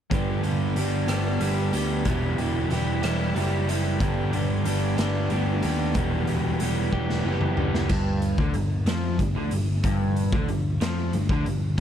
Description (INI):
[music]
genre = indie rock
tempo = 62 BPM (dotted quarters)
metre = 6/8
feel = straight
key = G major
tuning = A4 = 439 Hz
[part]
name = crunchy overdriven guitar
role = riff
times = 0.1-11.7 s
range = E2 to G4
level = -26 LUFS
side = right 1 dB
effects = none
[part]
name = picked electric bass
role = bass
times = 0.1-11.8 s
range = E1 to F2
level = -26 LUFS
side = equal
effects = none
[part]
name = raw garage drum kit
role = drums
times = 0.1-11.8 s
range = crash cymbal, hi-hat, kick drum, rim click, snare drum, toms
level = -29 LUFS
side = equal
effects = none
[sound]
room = studio ambience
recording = none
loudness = -22 LUFS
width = side -9 dB against mid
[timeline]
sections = 0.1-7.9 A section; 7.9-11.8 B section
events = drum fill 6.9-7.9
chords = 0.1 G; 2.1 Em; 4.0 G; 6.0 Em; 7.9 G5